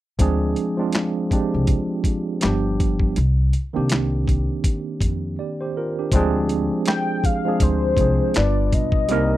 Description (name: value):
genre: R&B, neo-soul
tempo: 81 BPM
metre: 4/4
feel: swing 57% on 16ths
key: unclear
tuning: A4 = 441 Hz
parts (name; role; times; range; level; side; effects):
- tine electric piano; accompaniment; 0.2-9.4 s; Eb3 to D5; -22 LUFS; right 2 dB; medium stereo tremolo
- upright bass; bass; 0.2-9.4 s; G1 to F2; -22 LUFS; equal; none
- boom bap sampler-style drum kit; drums; 0.2-9.3 s; handclaps, hi-hat, kick drum, snare drum; -21 LUFS; equal; none
- warm velvety synth lead; melody; 6.9-9.4 s; C5 to G5; -23 LUFS; left 4 dB; chorus, slapback echo
room: little or no reverb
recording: dry, close 1970s-style studio recording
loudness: -18 LUFS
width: side -14 dB against mid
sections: 0.2-6.1 A section; 6.1-9.4 B section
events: break 5.4-6.1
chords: 0.2 Dm7b5; 2.4 G7; 3.2 Cm9; 6.1 Dm7b5; 8.3 G7